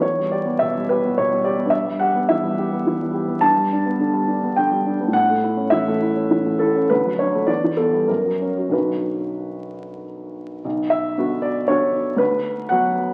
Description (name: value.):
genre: classical, romantic character piece for solo piano.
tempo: 90-119 BPM.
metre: 3/4.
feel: rubato.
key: B minor from 3.4 s.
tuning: A4 = 440 Hz.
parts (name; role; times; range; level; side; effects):
warm grand piano; solo; 0.0-13.1 s; B1 to A5; -20 LUFS; equal; none.
room: wet recital hall reverb, RT60 1.3 s.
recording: very old 78 rpm record, vinyl crackle.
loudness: -20 LUFS.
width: mono.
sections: 0.0-10.6 A section; 10.6-13.1 B section.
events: none.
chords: 0.0 Em; 1.7 Em/G; 3.4 G; 5.1 A; 6.9 D; 7.5 Em; 8.1 F#; 8.7 Bm; 12.2 Bm/D.